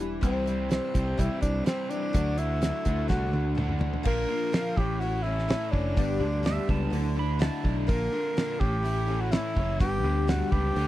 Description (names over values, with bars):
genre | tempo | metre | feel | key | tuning
folk rock and heartland rock | 125 BPM | 4/4 | straight | unclear | A4 = 440 Hz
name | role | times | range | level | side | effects
picked twelve-string acoustic guitar | accompaniment | 0.0-10.9 s | G2 to G4 | -34 LUFS | left 6 dB | wide subtle chorus
overdriven electric guitar | riff | 0.0-10.9 s | G2 to G4 | -34 LUFS | right 2 dB | none
picked electric bass | bass | 0.0-10.9 s | E1 to D2 | -29 LUFS | equal | none
damped 70s drum kit | drums | 0.0-10.9 s | crash cymbal, hi-hat, kick drum, snare drum, toms | -27 LUFS | equal | none
breathy tenor saxophone | melody | 0.2-10.9 s | C4 to Bb4 | -31 LUFS | equal | none
pedal steel guitar | second line | 6.5-7.8 s | E5 to B5 | -37 LUFS | right 7 dB | none
room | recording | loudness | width
little or no reverb | dry, close 1970s-style studio recording | -25 LUFS | side -14 dB against mid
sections
0.0-4.1 A section; 4.1-10.9 B section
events
drum fill 3.1-4.1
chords
0.2 C; 2.1 Dadd9; 4.1 Bb; 4.8 A; 6.0 G; 6.9 Dadd9; 7.9 Bb; 8.6 A; 9.8 G